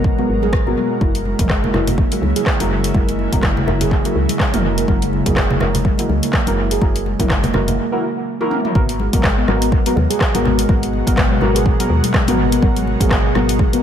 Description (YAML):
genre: afro house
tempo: 124 BPM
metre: 4/4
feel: swing 57% on 16ths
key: G# minor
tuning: A4 = 439 Hz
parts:
  - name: ethereal airy pad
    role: sustained chords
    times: 0.0-13.8 s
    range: B2 to A#4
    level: -25 LUFS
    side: left 1 dB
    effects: ensemble chorus, built-in reverb, sidechain pumping
  - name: handpan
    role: arpeggios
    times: 0.0-13.8 s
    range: F#3 to G#4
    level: -22 LUFS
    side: right 2 dB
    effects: sidechain pumping, analog delay
  - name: deep mellow chord stab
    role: stabs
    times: 0.0-13.8 s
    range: B3 to A#4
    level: -22 LUFS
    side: left 1 dB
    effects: chorus, phaser, sidechain pumping, dub echo
  - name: woody FM bass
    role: bass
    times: 0.0-13.7 s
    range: F#1 to D#2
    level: -21 LUFS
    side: equal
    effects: sidechain pumping
  - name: electronic kick drum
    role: drums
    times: 0.0-13.7 s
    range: none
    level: -18 LUFS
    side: equal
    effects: none
  - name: congas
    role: percussion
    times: 0.1-13.8 s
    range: none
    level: -25 LUFS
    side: left 2 dB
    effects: dub echo
  - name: deep house drum kit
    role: drums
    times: 0.5-13.8 s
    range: handclaps, hi-hat, rim click, toms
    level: -23 LUFS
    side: equal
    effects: dub echo
room: light reverb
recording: echo-heavy mix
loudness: -14 LUFS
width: side -9 dB against mid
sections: 0.0-8.8 A section; 8.8-13.8 B section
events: break 7.8-8.8; drum fill 8.4-8.8; drop 8.8-13.8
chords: 0.0 G#m9; 1.0 F#7; 8.8 G#m9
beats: 0.05 0.53 | 1.01 1.50 1.98 2.47 | 2.95 3.43 3.92 4.40 | 4.89 5.37 5.85 6.34 | 6.82 7.30 7.79 8.27 | 8.76 9.24 9.72 10.21 | 10.69 11.18 11.66 12.14 | 12.63 13.11 13.60